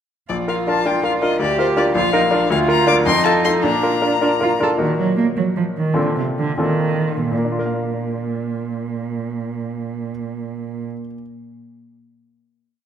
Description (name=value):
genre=quick classical-period movement for piano trio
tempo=81-110 BPM (dotted quarters)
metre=6/8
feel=rubato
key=Bb major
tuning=A4 = 442 Hz
part: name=clear violin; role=melody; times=0.3-4.6 s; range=C5 to D6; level=-21 LUFS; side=left 6 dB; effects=none
part: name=rich cello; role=second line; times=0.3-10.8 s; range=Bb2 to A4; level=-21 LUFS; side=right 4 dB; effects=none
part: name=bright grand piano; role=accompaniment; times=0.3-11.2 s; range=Bb1 to F5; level=-19 LUFS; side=left 2 dB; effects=none
room=wet scoring stage reverb, RT60 1.9 s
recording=none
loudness=-17 LUFS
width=side -9 dB against mid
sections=0.3-4.8 A section; 4.8-7.3 coda; 7.3-10.1 final chord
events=slowing down 4.2-7.3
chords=0.3 Bb; 1.4 Bb/D; 2.0 Bb; 2.5 Bb/D; 3.1 F7; 3.6 Bb; 4.8 Ebm/Bb; 6.0 F7/Bb; 7.3 Bb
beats=| 0.30 0.86 | 1.40 1.95 | 2.50 3.06 | 3.64 4.22 | 4.81 5.38 | 5.97 6.60 | 7.31 8.01 | 8.70 9.39